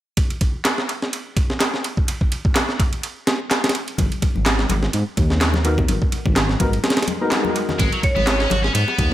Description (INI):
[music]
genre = breakbeat, breaks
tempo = 126 BPM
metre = 4/4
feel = swing 55% on 16ths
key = G# minor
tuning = A4 = 439 Hz
[part]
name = breakbeat sampler-style drum kit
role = drums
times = 0.2-9.1 s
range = kick drum, ride cymbal, snare drum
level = -20 LUFS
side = equal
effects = none
[part]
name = electronic handclaps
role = drums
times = 0.6-8.4 s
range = none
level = -26 LUFS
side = equal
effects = overdrive, analog delay
[part]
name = dark detuned saw bass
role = bass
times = 4.0-9.1 s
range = G#1 to G#2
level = -21 LUFS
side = equal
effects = tube saturation
[part]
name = congas and bongos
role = percussion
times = 4.0-9.1 s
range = none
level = -28 LUFS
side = left 4 dB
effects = analog delay
[part]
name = dark grand piano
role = stabs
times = 5.6-7.8 s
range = B3 to A#4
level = -25 LUFS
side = left 2 dB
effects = analog delay
[part]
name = swell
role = sound effects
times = 7.1-7.8 s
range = none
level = -28 LUFS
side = left 2 dB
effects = none
[part]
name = scooped high-gain guitar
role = riff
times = 7.8-9.1 s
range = F#3 to F#4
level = -22 LUFS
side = left 1 dB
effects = distortion, analog delay
[part]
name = vibraphone with hard mallets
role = melody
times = 8.0-8.5 s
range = C#5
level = -24 LUFS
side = right 2 dB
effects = telephone sound, vintage 12-bit sampler grit, analog delay
[sound]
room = light reverb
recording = echo-heavy mix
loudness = -17 LUFS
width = side -13 dB against mid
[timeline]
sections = 0.2-7.8 A section; 7.8-9.1 B section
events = kick drops out 6.8-7.8; swell 7.1-7.8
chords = 0.2 G#m7; 7.8 G#m